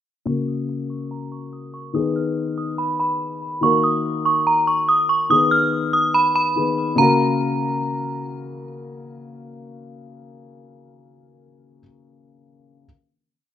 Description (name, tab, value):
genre	hip hop, trap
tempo	143 BPM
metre	4/4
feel	half-time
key	F# major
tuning	A4 = 440 Hz
part	metallic FM bell	melody	0.3-8.2 s	A#5 to E#6	-18 LUFS	right 2 dB	chorus, low-pass filter
part	dark concert grand piano	accompaniment	0.3-12.9 s	C#3 to B4	-24 LUFS	left 3 dB	low-pass filter
room	light reverb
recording	rough home demo mix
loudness	-18 LUFS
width	side -10 dB against mid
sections	0.3-7.0 breakdown; 7.0-10.3 final chord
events	filter sweep 0.3-7.0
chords	0.3 F#; 1.9 G#m; 3.6 D#m; 5.3 G#m; 7.0 F#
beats	| 0.27 0.69 1.11 1.53 | 1.95 2.37 2.79 3.21 | 3.63 4.05 4.47 4.89 | 5.31 5.72 6.14 6.56 | 6.98 7.40 7.82 8.24 | 8.66 9.08 9.50 9.92